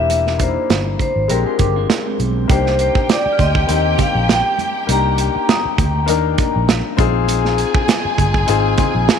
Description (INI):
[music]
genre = lush 1970s-style soul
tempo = 100 BPM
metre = 4/4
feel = swing 54% on 16ths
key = unclear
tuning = A4 = 441 Hz
[part]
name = vibraphone with medium hard mallets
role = melody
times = 0.0-6.7 s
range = Bb4 to Bb5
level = -20 LUFS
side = left 1 dB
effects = none
[part]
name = clear grand piano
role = accompaniment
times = 0.0-9.2 s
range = Ab3 to Bb4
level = -21 LUFS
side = left 13 dB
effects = none
[part]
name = vintage muted fingered electric bass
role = bass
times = 0.0-9.1 s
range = E1 to Eb2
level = -19 LUFS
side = equal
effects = none
[part]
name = modern studio drum kit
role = drums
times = 0.1-9.2 s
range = hi-hat, kick drum, snare drum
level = -18 LUFS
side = right 3 dB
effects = none
[part]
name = congas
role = percussion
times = 0.1-9.2 s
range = none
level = -29 LUFS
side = right 10 dB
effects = none
[part]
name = electric guitar through a small old amp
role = riff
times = 1.3-2.5 s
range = Ab3 to Bb4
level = -25 LUFS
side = right 11 dB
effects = spring reverb
[part]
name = warm studio violin section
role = second line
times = 2.5-9.2 s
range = G4 to Ab5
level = -23 LUFS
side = left 1 dB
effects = none
[part]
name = worn celesta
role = texture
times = 2.5-9.2 s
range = G5 to F6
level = -30 LUFS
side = right 1 dB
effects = none
[sound]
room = light reverb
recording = 1960s-style stereo with parts hard left and right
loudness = -14 LUFS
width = side -7 dB against mid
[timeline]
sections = 0.0-2.5 A section; 2.5-9.2 B section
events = none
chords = 0.0 C7/E; 1.3 Bb13; 2.5 Cm7; 7.0 Bb7sus4